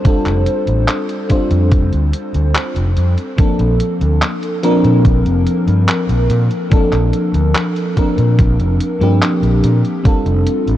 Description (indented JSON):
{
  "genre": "vaporwave",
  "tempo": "72 BPM",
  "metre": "4/4",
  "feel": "straight",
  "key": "unclear",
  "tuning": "A4 = 443 Hz",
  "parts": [
    { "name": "FM electric piano with soft pad layer", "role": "accompaniment", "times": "0.0-10.8 s", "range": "F3 to C5", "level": "-16 LUFS", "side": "equal", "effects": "lush chorus, analog delay" },
    { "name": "overdriven fingered electric bass", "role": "bass", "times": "0.1-10.8 s", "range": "F1 to Bb2", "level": "-14 LUFS", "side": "equal", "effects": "none" },
    { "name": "detuned 8-bit digital drum machine", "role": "drums", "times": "0.1-10.8 s", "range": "handclaps, hi-hat", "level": "-23 LUFS", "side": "equal", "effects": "none" },
    { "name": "electronic kick drum", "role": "drums", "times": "0.1-10.2 s", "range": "none", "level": "-12 LUFS", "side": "equal", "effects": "none" }
  ],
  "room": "light reverb, digital ambience",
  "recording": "cassette tape",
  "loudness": "-12 LUFS",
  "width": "side -13 dB against mid",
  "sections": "0.0-10.8 A section",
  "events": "none",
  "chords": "0.0 F69; 3.4 Bbmaj9; 10.1 F69"
}